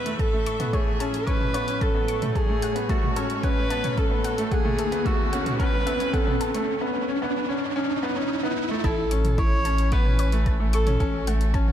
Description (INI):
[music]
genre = piano and strings electronica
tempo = 111 BPM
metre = 4/4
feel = straight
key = A major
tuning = A4 = 439 Hz
[part]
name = warm viola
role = melody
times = 0.0-11.2 s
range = F#4 to C#5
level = -28 LUFS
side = right 1 dB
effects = tape echo
[part]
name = warm string quartet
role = sustained chords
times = 0.0-11.7 s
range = D2 to E5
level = -35 LUFS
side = left 1 dB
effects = sidechain pumping
[part]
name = analog pluck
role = arpeggios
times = 0.0-11.7 s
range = A4 to C#6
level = -36 LUFS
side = left 3 dB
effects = chorus, sidechain pumping, tape echo
[part]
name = riser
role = sound effects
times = 0.0-8.8 s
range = none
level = -31 LUFS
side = right 1 dB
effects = none
[part]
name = bright grand piano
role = riff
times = 0.1-11.7 s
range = A3 to E4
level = -29 LUFS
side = left 1 dB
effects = tape echo
[part]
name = deep house drum kit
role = drums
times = 0.1-11.7 s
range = hi-hat, toms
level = -34 LUFS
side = right 1 dB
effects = studio reverb
[part]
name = electronic kick drum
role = drums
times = 0.2-11.7 s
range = none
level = -25 LUFS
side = equal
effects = studio reverb
[part]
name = round analog bass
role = bass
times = 8.8-11.7 s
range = A1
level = -23 LUFS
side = equal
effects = sidechain pumping
[sound]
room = moderate lush hall reverb, RT60 1.8 s, studio ambience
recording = none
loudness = -21 LUFS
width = side -10 dB against mid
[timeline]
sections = 0.0-8.8 A section; 8.8-11.7 B section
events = build-up 0.0-8.8; riser 0.0-8.8; break 6.7-8.8; drop 8.8-11.7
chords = 0.2 A; 2.4 F#m/A; 4.5 Dadd9; 6.7 Aadd9 (rootless); 8.8 A; 11.0 F#m/A